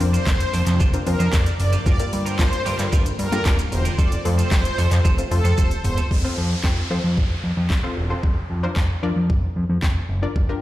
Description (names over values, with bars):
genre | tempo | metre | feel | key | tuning
dance-pop | 113 BPM | 4/4 | straight | unclear | A4 = 440 Hz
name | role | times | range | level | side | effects
punchy chord stab | accompaniment | 0.0-10.6 s | A3 to D5 | -29 LUFS | left 3 dB | chorus, sidechain pumping
phased string machine | sustained chords | 0.0-6.1 s | C3 to F4 | -32 LUFS | left 1 dB | ensemble chorus, phaser, sidechain pumping
twelve-string electric guitar | riff | 0.0-6.1 s | G3 to C5 | -32 LUFS | right 5 dB | wide subtle chorus
fat analog bass | bass | 0.0-10.5 s | Eb1 to G2 | -21 LUFS | equal | sidechain pumping
smooth R&B drum kit | drums | 0.0-10.5 s | handclaps, hi-hat, kick drum, shaker, snare drum, toms | -21 LUFS | equal | none
supersaw pad | melody | 0.1-5.9 s | A4 to D5 | -28 LUFS | equal | ping-pong delay
downlifter | sound effects | 6.1-10.4 s | none | -33 LUFS | equal | none
room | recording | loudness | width
little or no reverb | played on a big sound system in a bare room, stone room reverb | -18 LUFS | side -15 dB against mid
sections
0.0-6.1 A section; 6.1-10.6 B section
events
drop 0.0-6.1; drum fill 5.6-6.1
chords
0.0 Bbadd9/F; 1.9 Gm7; 4.0 F; 8.2 Bbadd9/F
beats
0.27 0.80 1.33 | 1.86 2.39 2.92 3.46 | 3.99 4.52 5.05 5.58 | 6.11 6.64 7.17 7.70 | 8.23 8.77 9.30 9.83 | 10.36